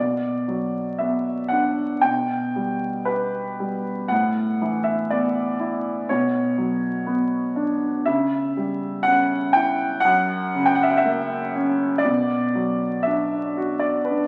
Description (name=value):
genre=classical, lyrical solo piano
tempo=56-62 BPM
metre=4/4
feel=rubato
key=B minor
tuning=A4 = 442 Hz
part: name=warm baby grand piano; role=solo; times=0.0-14.3 s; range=F#2 to G5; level=-22 LUFS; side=equal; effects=none
room=moderate scoring stage reverb, RT60 1.5 s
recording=very old 78 rpm record, vinyl crackle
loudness=-22 LUFS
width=mono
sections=0.0-14.3 A section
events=none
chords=0.0 Bm; 2.0 G/B; 4.1 Asus2; 6.1 Bm; 8.1 C#dim; 10.0 F#; 12.0 Bm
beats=1.00 2.04 3.09 | 4.11 5.11 6.10 7.08 | 8.07 9.05 10.04 11.04 | 12.05 13.06 14.10